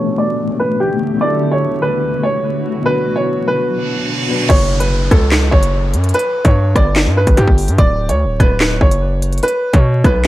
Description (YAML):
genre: hip hop, drill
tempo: 146 BPM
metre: 4/4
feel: half-time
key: F# phrygian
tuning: A4 = 439 Hz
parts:
  - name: clear upright piano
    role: melody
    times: 0.0-10.3 s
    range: G4 to D5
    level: -18 LUFS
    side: right 1 dB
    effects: low-pass filter, tape echo
  - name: dark concert grand piano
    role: accompaniment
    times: 0.0-4.5 s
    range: B2 to B4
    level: -22 LUFS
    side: left 1 dB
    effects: low-pass filter
  - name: granular cloud pad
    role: sustained chords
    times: 0.0-4.5 s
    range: B2 to G4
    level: -21 LUFS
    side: left 1 dB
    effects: built-in reverb, low-pass filter
  - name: reverse cymbal and downlifter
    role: sound effects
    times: 3.8-7.8 s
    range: none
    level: -25 LUFS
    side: right 3 dB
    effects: none
  - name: distorted 808-style bass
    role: bass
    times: 4.5-10.3 s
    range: D1 to B2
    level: -14 LUFS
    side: equal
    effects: distortion
  - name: drill drum kit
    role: drums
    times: 4.5-10.3 s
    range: crash cymbal, handclaps, hi-hat, kick drum, rim click, snare drum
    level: -13 LUFS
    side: equal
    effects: none
room: little or no reverb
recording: vinyl crackle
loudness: -12 LUFS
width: side -15 dB against mid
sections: 0.0-4.5 A section; 4.5-10.3 B section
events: filter sweep 0.0-4.5; reverse cymbal 3.8-4.5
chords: 0.0 Gadd9; 1.2 Dadd9; 2.9 Bm; 4.5 F#m; 6.1 G5; 7.8 D; 9.4 Bsus2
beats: 0.39 0.80 | 1.21 1.62 2.03 2.44 | 2.85 3.26 3.67 4.08 | 4.50 4.91 5.32 5.73 | 6.14 6.55 6.96 7.37 | 7.78 8.20 8.61 9.02 | 9.43 9.84 10.25